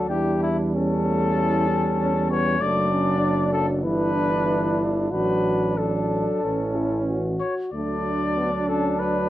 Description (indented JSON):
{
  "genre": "classical, brass quintet",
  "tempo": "94 BPM",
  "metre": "4/4",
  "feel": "uneven beats, rubato",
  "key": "D major",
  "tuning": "A4 = 440 Hz",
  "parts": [
    { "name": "warm trumpet", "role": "melody", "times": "0.0-9.3 s", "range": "E4 to D5", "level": "-26 LUFS", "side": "left 4 dB", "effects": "none" },
    { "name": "warm flugelhorn", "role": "second line", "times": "0.0-9.3 s", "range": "C#4 to D4", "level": "-28 LUFS", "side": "right 4 dB", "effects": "none" },
    { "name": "mellow trombone", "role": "accompaniment", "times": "0.0-9.3 s", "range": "E3 to G3", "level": "-27 LUFS", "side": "right 2 dB", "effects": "none" },
    { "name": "warm French horn", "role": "accompaniment", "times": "0.0-9.3 s", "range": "A3 to A4", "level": "-28 LUFS", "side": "left 2 dB", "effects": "none" },
    { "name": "warm tuba", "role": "bass", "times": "0.0-9.3 s", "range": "F#1 to E2", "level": "-27 LUFS", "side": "right 2 dB", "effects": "none" }
  ],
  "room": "light reverb",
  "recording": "worn, warbling old tape, cassette tape, warbly pitch drift",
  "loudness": "-20 LUFS",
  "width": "side -14 dB against mid",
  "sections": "0.0-9.3 A section",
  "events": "none",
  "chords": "0.1 A7/E; 2.6 D/F#; 3.8 Em7/G; 5.1 D/A; 6.4 A; 7.7 D",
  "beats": "| 0.10 0.76 1.38 1.99 | 2.60 3.22 3.84 4.47 | 5.12 5.78 6.43 7.08 | 7.73 8.37 9.00"
}